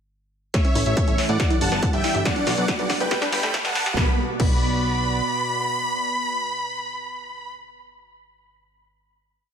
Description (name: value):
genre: uplifting trance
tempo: 140 BPM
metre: 4/4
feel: straight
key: B minor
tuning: A4 = 439 Hz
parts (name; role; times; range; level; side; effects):
- dense compressed supersaw; melody; 0.5-7.5 s; B4 to B5; -25 LUFS; equal; cassette tape, sidechain pumping, dub echo
- lush unison pad; sustained chords; 0.5-7.1 s; B2 to D5; -29 LUFS; equal; chorus, sidechain pumping
- wide unison pluck; arpeggios; 0.5-4.5 s; A3 to D5; -30 LUFS; left 1 dB; sidechain pumping, dub echo
- electronic kick drum; drums; 0.5-4.5 s; none; -22 LUFS; equal; overdrive
- punchy analog drum machine; drums; 0.5-4.5 s; crash cymbal, hi-hat, snare drum; -27 LUFS; equal; high-pass filter on snare, sidechain pumping on hats, high-pass filter on hats, sidechain pumping on cymbals, high-pass filter on cymbals, high-pass filter on room
- riser; sound effects; 2.0-4.0 s; none; -32 LUFS; right 2 dB; none
- plucky analog bass; bass; 0.8-5.2 s; F#1 to A2; -26 LUFS; equal; sidechain pumping
room: light reverb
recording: high-pass filter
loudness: -20 LUFS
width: side -8 dB against mid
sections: 0.5-4.0 build; 4.0-7.4 final chord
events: build-up 0.5-4.0; drum fill 0.5-4.0; filter sweep on synth arpeggio sound 0.5-4.0; filter sweep 0.5-4.0; riser 2.0-4.0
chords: 0.5 A; 1.4 Em7/G; 2.3 Bm; 3.1 Gadd9; 4.0 Bm